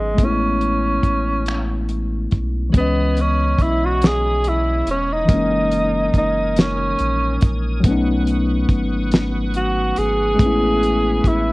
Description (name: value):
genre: slow six-eight R&B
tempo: 47 BPM (dotted quarters)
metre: 6/8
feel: straight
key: C# minor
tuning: A4 = 440 Hz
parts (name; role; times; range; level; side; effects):
- breathy tenor saxophone; melody; 0.0-11.5 s; G#3 to G#4; -20 LUFS; right 1 dB; slapback echo
- tine electric piano; accompaniment; 0.0-11.5 s; E3 to D#5; -22 LUFS; left 2 dB; none
- round analog bass; bass; 0.0-11.5 s; E1 to C#2; -22 LUFS; equal; none
- damped 70s drum kit; drums; 0.2-11.4 s; finger snaps, hi-hat, kick drum, snare drum; -17 LUFS; equal; none
- bright tonewheel organ; sustained chords; 2.7-11.5 s; A#4 to D#6; -33 LUFS; right 1 dB; chorus vibrato, slow rotary speaker
room: small room ambience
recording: worn, warbling old tape, cassette tape, warbly pitch drift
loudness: -16 LUFS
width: side -21 dB against mid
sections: 0.0-2.7 A section; 2.7-11.5 B section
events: none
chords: 0.2 Amaj9; 2.7 C#m9; 5.3 F#13; 7.8 B9; 10.4 Amaj9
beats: | 0.18 1.46 | 2.73 4.01 | 5.29 6.57 | 7.84 9.12 | 10.39